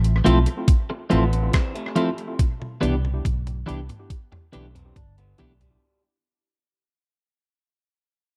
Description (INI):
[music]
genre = lovers rock reggae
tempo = 70 BPM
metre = 4/4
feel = straight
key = unclear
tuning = A4 = 439 Hz
[part]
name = vintage muted fingered electric bass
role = bass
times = 0.0-5.8 s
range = G1 to C2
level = -24 LUFS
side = equal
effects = none
[part]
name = detuned 8-bit digital drum machine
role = drums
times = 0.0-5.8 s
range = hi-hat, kick drum, rim click, toms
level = -25 LUFS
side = equal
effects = tape echo
[part]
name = tine electric piano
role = accompaniment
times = 0.2-5.5 s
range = A3 to G4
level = -28 LUFS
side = equal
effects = overdrive, tape echo
[part]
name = twelve-string electric guitar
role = stabs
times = 0.2-5.5 s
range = E3 to A4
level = -28 LUFS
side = equal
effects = spring reverb
[part]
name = electric guitar through a small old amp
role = arpeggios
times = 1.1-6.0 s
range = B2 to D4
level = -35 LUFS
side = equal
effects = none
[sound]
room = digital ambience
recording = dry, close 1970s-style studio recording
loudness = -22 LUFS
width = mono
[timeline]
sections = 0.0-5.8 A section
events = fade-out 0.0-5.8; drum fill 2.4-5.8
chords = 0.0 Dm9; 2.4 Cmaj9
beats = 0.68 1.53 | 2.39 3.24 4.10 4.95